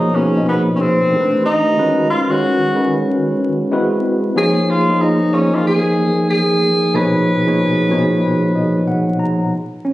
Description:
R&B; 93 BPM; 4/4; swing 64% on 16ths; B lydian; A4 = 436 Hz
warm tenor saxophone; melody; 0.0-8.9 s; B3 to B4; -17 LUFS; equal; slapback echo
mellow tine electric piano; accompaniment; 0.0-9.9 s; A#2 to A#5; -15 LUFS; equal; medium stereo tremolo
light reverb, small room reverb; recorded on a phone in the room, studio reverb, vinyl crackle, nothing above 11.0 kHz; -13 LUFS; side -16 dB against mid
0.0-9.5 A section
tine electric piano fill 8.2-9.5
0.0 Bmaj13; 1.1 Am9; 1.8 G#m7; 3.7 G#7alt; 4.3 C#69; 6.9 Bmaj7

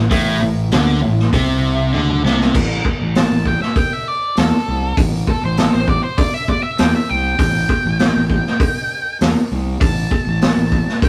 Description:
blues rock power trio and southern rock; 99 BPM; 4/4; straight; A minor; A4 = 440 Hz
octave-fuzz lead guitar; melody; 0.0-11.1 s; A4 to A5; -24 LUFS; equal; distortion
overdriven electric guitar; riff; 0.0-2.5 s; A2 to D3; -19 LUFS; equal
fuzz fingered electric bass; bass; 0.0-10.8 s; A1 to E2; -23 LUFS; equal; overdrive
vintage drum kit; drums; 0.1-11.1 s; crash cymbal, hi-hat, kick drum, snare drum, toms; -19 LUFS; equal
light reverb; rough rehearsal-room recording; -17 LUFS; mono
0.0-2.5 A section; 2.5-11.1 B section
drum fill 1.9-2.5; lead electric guitar solo 2.5-11.1
0.0 Am; 2.5 A7(no3)

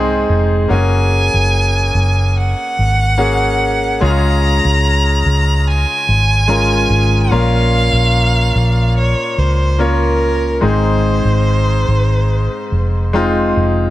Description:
pop ballad; 72 BPM; 4/4; straight; Db major; A4 = 441 Hz
bright baby grand piano; accompaniment; 0.0-13.9 s; Ab2 to Db5; -17 LUFS; left 2 dB
vintage muted fingered electric bass; bass; 0.0-13.9 s; F1 to Db2; -14 LUFS; equal
warm violin; melody; 0.7-13.1 s; Bb4 to Bb5; -18 LUFS; right 1 dB; digital delay
light reverb, studio reverb; -12 LUFS; side -15 dB against mid
0.0-13.9 A section
0.0 Ab; 0.7 Gbadd9; 4.0 Db; 7.3 Bbm; 10.6 Ab

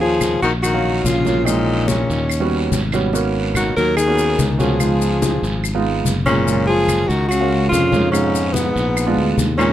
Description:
Afro-Cuban jazz; 144 BPM; 4/4; straight; Eb minor; A4 = 440 Hz
breathy alto saxophone; melody; 0.0-9.7 s; Cb4 to Bb4; -20 LUFS; equal; plate reverb
breathy baritone saxophone; second line; 0.0-9.7 s; Ab2 to Gb3; -22 LUFS; left 4 dB
warm baby grand piano; accompaniment; 0.0-9.7 s; Fb3 to F5; -22 LUFS; right 4 dB
fingered electric bass; bass; 0.0-9.7 s; Gb1 to F2; -21 LUFS; equal
congas; percussion; 0.0-9.6 s; -25 LUFS; left 3 dB
claves; percussion; 0.2-9.7 s; -29 LUFS; right 5 dB
guiro; percussion; 0.2-9.7 s; -31 LUFS; right 3 dB
maracas; percussion; 0.2-9.7 s; -31 LUFS; left 8 dB
moderate club reverb, RT60 0.5 s; -15 LUFS; side -12 dB against mid
0.0-9.7 A section
0.0 Ebm9; 1.5 Bbm7b5; 2.3 Eb7alt; 3.1 Abm11; 4.8 Db7; 6.5 Gbmaj9; 8.1 Fm7b5; 9.0 Bb7b9

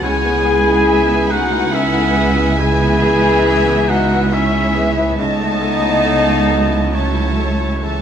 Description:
cinematic, emotional film score for orchestra; 69 BPM; 3/4; rubato; A4 = 437 Hz
rich symphonic violin section; melody; 0.0-8.0 s; E5 to A5; -24 LUFS; equal
clear oboe; second line; 0.0-8.0 s; A4 to G#5; -22 LUFS; equal
mellow flute section; second line; 0.0-8.0 s; A4 to G#5; -24 LUFS; left 1 dB
warm clarinet; second line; 0.0-8.0 s; E3 to E4; -23 LUFS; left 1 dB
warm symphonic violin section; second line; 0.0-8.0 s; G#4 to G#5; -26 LUFS; left 3 dB
clear baby grand piano; accompaniment; 0.0-8.0 s; C#2 to A4; -25 LUFS; equal
warm symphonic viola section; accompaniment; 0.0-8.0 s; E3 to C#4; -25 LUFS; right 1 dB
mellow French horn section; sustained chords; 0.0-8.0 s; A3 to G#4; -20 LUFS; left 3 dB
dark symphonic cello section; bass; 0.0-8.0 s; C#2; -21 LUFS; right 2 dB
warm symphonic double bass section; bass; 0.0-8.0 s; C#2; -21 LUFS; right 3 dB
moderate scoring stage reverb, RT60 2.0 s; -12 LUFS; side -8 dB against mid
0.0-8.0 A section
0.0 C#m7; 5.2 A/C#

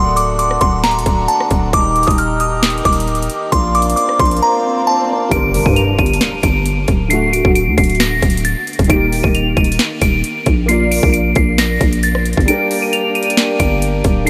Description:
hip hop, trap; 134 BPM; 4/4; half-time; G minor; A4 = 440 Hz
delicate synth tine bell; melody; 0.0-14.3 s; A5 to F7; -19 LUFS; equal; chorus, analog delay
pedal harmonium; sustained chords; 0.0-5.3, 12.5-14.3 s; D3 to Bb4; -23 LUFS; equal
growling 808-style bass; bass; 0.0-14.3 s; D1 to G2; -20 LUFS; equal
trap drum kit; drums; 0.2-14.3 s; hi-hat, kick drum, rim click, snare drum; -20 LUFS; equal; overdrive
swell and impact; sound effects; 4.1-7.1 s; -28 LUFS; equal
warm concert grand piano; accompaniment; 5.3-14.3 s; D3 to D5; -23 LUFS; equal; ensemble chorus
moderate huge ambient reverb, RT60 5.9 s; dreamy mix soaked in reverb; -15 LUFS; mono
0.0-5.3 A section; 5.3-14.3 B section
swell 4.1-5.3; impact 5.3-7.1; kick muted 12.5-13.4
0.0 D; 1.7 Eb; 3.5 Bb; 5.3 Gm; 7.1 D; 8.9 Eb; 10.7 Bb; 12.5 Gm

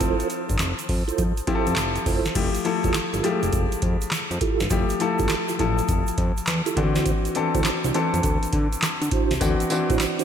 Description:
R&B, new jack swing; 102 BPM; 4/4; swing 66% on 16ths; A4 = 444 Hz
clear grand piano; accompaniment; 0.0-10.2 s; E3 to A4; -25 LUFS; left 3 dB; slapback echo
mellow tonewheel organ; stabs; 0.0-10.2 s; D4 to C5; -28 LUFS; right 8 dB; chorus vibrato, fast rotary speaker, ping-pong delay
fat analog bass; bass; 0.0-10.0 s; E1 to D3; -26 LUFS; equal
booming analog drum machine; drums; 0.0-10.2 s; crash cymbal, handclaps, hi-hat, kick drum, snare drum, tambourine; -25 LUFS; equal
egg shaker; percussion; 0.0-10.2 s; -38 LUFS; right 11 dB
moderate lush hall reverb, RT60 1.7 s; big arena sound; -20 LUFS; side -8 dB against mid
0.0-2.4 A section; 2.4-10.2 B section
0.0 Fmaj7; 2.4 Fmaj9; 6.8 D9

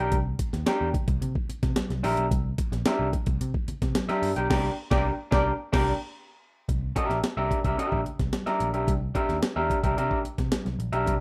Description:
funk; 110 BPM; 4/4; straight; C mixolydian; A4 = 438 Hz
electric guitar through a small old amp; accompaniment; 0.0-11.1 s; D4 to G5; -29 LUFS; equal
vintage muted picked electric bass; bass; 0.0-11.2 s; Bb1 to C3; -32 LUFS; equal
breakbeat sampler-style drum kit; drums; 0.1-11.2 s; crash cymbal, hi-hat, kick drum, snare drum; -30 LUFS; equal
congas; percussion; 0.1-11.2 s; -41 LUFS; equal
dark horn section; second line; 4.5-5.9 s; Bb3 to D5; -35 LUFS; equal
digital ambience; rough home demo mix; -27 LUFS; mono
0.0-6.7 A section; 6.7-11.2 B section
band accent 4.5-6.7
0.0 C7sus2; 6.7 C9

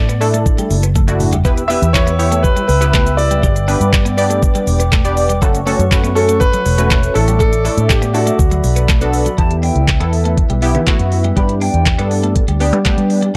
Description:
dance-pop; 121 BPM; 4/4; straight; E dorian; A4 = 440 Hz
warm concert grand piano; melody; 0.0-8.8 s; F#4 to E5; -21 LUFS; equal
funky polysynth comp; accompaniment; 0.0-13.4 s; A3 to D5; -22 LUFS; equal; chorus, sidechain pumping
vintage muted fingered electric bass; bass; 0.0-13.3 s; E1 to G3; -18 LUFS; equal; sidechain pumping
twelve-string electric guitar; riff; 0.1-13.3 s; F#3 to G4; -28 LUFS; equal; analog chorus
smooth R&B drum kit; drums; 0.1-13.3 s; handclaps, hi-hat, kick drum, shaker, toms; -18 LUFS; equal
glass harmonica; sustained chords; 1.5-13.4 s; B3 to E6; -26 LUFS; equal; sidechain pumping
hollow concert flute; melody; 9.4-12.1 s; G5 to B5; -27 LUFS; equal; sidechain pumping, analog delay
little or no reverb; dry, gritty hardware recording; -14 LUFS; mono
0.0-9.4 A section; 9.4-13.4 B section
drum fill 1.0-1.5
0.0 Asus4; 1.5 Em; 3.4 G; 5.4 F#m; 7.2 Asus4; 8.4 D6; 9.4 Em; 11.4 G

